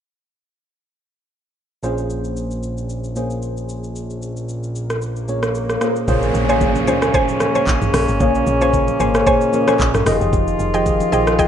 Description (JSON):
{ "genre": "amapiano", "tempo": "113 BPM", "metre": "4/4", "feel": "swing 55% on 16ths", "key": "Bb dorian", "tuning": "A4 = 440 Hz", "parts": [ { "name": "tine electric piano", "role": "accompaniment", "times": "1.8-11.5 s", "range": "Bb2 to Eb5", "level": "-21 LUFS", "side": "equal", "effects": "lush chorus" }, { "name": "fat analog bass", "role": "bass", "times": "1.8-5.8 s", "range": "Bb1", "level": "-26 LUFS", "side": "equal", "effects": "none" }, { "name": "afro-pop drum kit", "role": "drums", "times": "1.8-11.5 s", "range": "handclaps, hi-hat, kick drum, rim click, shaker, toms", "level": "-21 LUFS", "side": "equal", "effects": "none" }, { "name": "swell and downlifter", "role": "sound effects", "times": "5.0-10.3 s", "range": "none", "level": "-27 LUFS", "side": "equal", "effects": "none" }, { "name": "dark brass ensemble", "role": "sustained chords", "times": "6.1-11.5 s", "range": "Db3 to F4", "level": "-21 LUFS", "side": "equal", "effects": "none" }, { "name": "deep log drum bass", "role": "bass", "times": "6.1-11.5 s", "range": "F1 to Db2", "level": "-23 LUFS", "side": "equal", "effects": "none" }, { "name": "congas", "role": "percussion", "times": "6.1-11.3 s", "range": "none", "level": "-31 LUFS", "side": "left 1 dB", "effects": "none" }, { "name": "mallet-like synth pluck", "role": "stabs", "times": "6.5-11.5 s", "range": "Ab4 to Ab5", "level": "-20 LUFS", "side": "left 1 dB", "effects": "chorus, ping-pong delay" } ], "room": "moderate lush hall reverb, RT60 1.8 s, digital ambience", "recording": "rough home demo mix, nothing above 10.3 kHz", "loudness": "-16 LUFS", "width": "side -9 dB against mid", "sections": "1.8-6.1 A section; 6.1-11.5 B section", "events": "swell 5.0-6.1; drop 6.1-11.5", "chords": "1.8 Bbm9; 10.1 Fm9" }